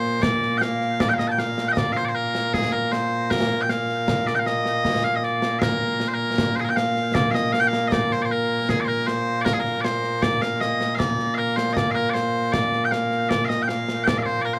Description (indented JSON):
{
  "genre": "scottish traditional, Scottish pipe music",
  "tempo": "78 BPM",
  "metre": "2/4",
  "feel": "straight",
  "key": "Bb major",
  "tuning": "A4 = 440 Hz",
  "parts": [
    { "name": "loud bright bagpipes", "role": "melody", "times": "0.0-14.6 s", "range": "Bb2 to A5", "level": "-24 LUFS", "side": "equal", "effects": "none" },
    { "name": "concert snare drum and concert bass drum", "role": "drums", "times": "0.2-14.4 s", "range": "none", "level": "-29 LUFS", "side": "equal", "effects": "none" }
  ],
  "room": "little or no reverb",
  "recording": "recorded outdoors, with no room sound",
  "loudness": "-23 LUFS",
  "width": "mono",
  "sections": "0.0-7.2 A section; 7.2-14.6 A section",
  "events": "none",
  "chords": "none"
}